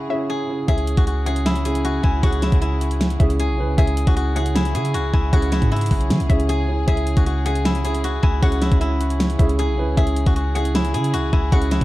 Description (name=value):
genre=hip hop, trap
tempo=155 BPM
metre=4/4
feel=half-time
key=C# minor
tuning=A4 = 440 Hz
part: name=steel-string zither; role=melody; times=0.0-11.8 s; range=E4 to G#4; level=-26 LUFS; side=left 2 dB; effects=none
part: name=hollow square pluck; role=second line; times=0.0-11.8 s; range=E5 to G#5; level=-33 LUFS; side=left 4 dB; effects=chorus, digital delay
part: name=dark concert grand piano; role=accompaniment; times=0.0-11.8 s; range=C#3 to B4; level=-26 LUFS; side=right 3 dB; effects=none
part: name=dark studio string section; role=sustained chords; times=0.0-11.8 s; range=C#3 to G#4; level=-32 LUFS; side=left 1 dB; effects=none
part: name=warm 808-style bass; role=bass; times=0.7-11.8 s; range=B1 to E3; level=-21 LUFS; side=equal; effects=none
part: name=dubstep drum kit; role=drums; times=0.7-11.8 s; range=hi-hat, kick drum, snare drum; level=-20 LUFS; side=equal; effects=none
room=small room ambience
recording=dark, warm production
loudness=-17 LUFS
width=side -17 dB against mid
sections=0.7-11.8 A section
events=break 0.0-0.7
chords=0.0 C#m